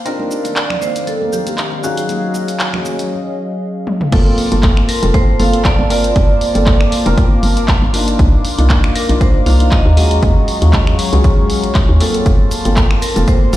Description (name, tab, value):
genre	deep house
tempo	118 BPM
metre	4/4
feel	swing 55% on 16ths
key	G minor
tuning	A4 = 440 Hz
part	hollow soft pad	sustained chords	0.0-13.6 s	Eb3 to D6	-24 LUFS	right 1 dB	chorus, sidechain pumping
part	felt-muted upright piano	stabs	0.0-13.6 s	Ab3 to F5	-20 LUFS	left 1 dB	sidechain pumping, low-pass filter, digital delay
part	warbly tape-like pad	texture	0.0-13.6 s	Eb3 to Bb5	-26 LUFS	left 3 dB	chorus, built-in reverb, phaser, sidechain pumping
part	vibraphone with medium hard mallets	melody	0.1-13.6 s	Gb4 to F5	-21 LUFS	right 2 dB	ping-pong delay
part	punchy analog drum machine	drums	0.1-13.6 s	crash cymbal, finger snaps, handclaps, hi-hat, shaker, toms	-21 LUFS	equal	none
part	congas	percussion	0.2-3.1 s	none	-27 LUFS	right 2 dB	none
part	hollow knocking FM bass	bass	4.1-13.6 s	F1 to Eb2	-15 LUFS	equal	none
part	electronic kick drum	drums	4.1-13.4 s	none	-13 LUFS	equal	none
room	little or no reverb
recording	played on a big sound system in a bare room, large studio reverb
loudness	-11 LUFS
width	side -14 dB against mid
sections	0.0-4.1 A section; 4.1-13.6 B section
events	drum fill 3.9; drop 4.1-13.6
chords	0.1 Cm11; 1.8 Ebm11; 4.1 Gm11; 8.2 Cm11; 10.0 Ebm11; 12.3 Gm11